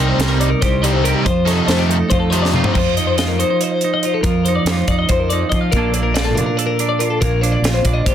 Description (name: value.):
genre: math rock and midwest emo.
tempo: 282 BPM (eighths).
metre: 7/8.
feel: straight.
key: unclear.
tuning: A4 = 441 Hz.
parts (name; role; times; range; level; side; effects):
twelve-string electric guitar; accompaniment; 0.0-8.1 s; Bb2 to C5; -20 LUFS; right 6 dB; none.
twelve-string electric guitar; arpeggios; 0.0-8.1 s; G4 to F5; -20 LUFS; left 6 dB; spring reverb.
crunchy overdriven guitar; riff; 0.0-2.8 s; C3 to Eb4; -19 LUFS; left 1 dB; none.
fuzz fingered electric bass; bass; 0.0-8.1 s; Bb1 to F3; -20 LUFS; equal; overdrive.
crisp fusion drum kit; drums; 0.2-8.1 s; crash cymbal, hi-hat, kick drum, snare drum, toms; -20 LUFS; equal; soft clipping on snare.
room: light reverb.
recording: dense, heavily limited modern master.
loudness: -14 LUFS.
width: side -10 dB against mid.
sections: 0.0-2.7 A section; 2.7-8.1 B section.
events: drum fill 2.4-2.7.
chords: 0.0 Cm7; 1.3 F7; 2.7 F7sus4; 5.7 Bbmaj7.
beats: 0.20 0.41 0.62 0.83 1.05 | 1.26 1.47 1.69 1.90 2.11 2.32 2.54 | 2.75 2.96 3.17 3.39 3.60 3.81 4.03 | 4.24 4.45 4.66 4.88 5.09 5.30 5.51 | 5.73 5.94 6.15 6.37 6.58 6.79 7.00 | 7.22 7.43 7.64 7.86 8.07.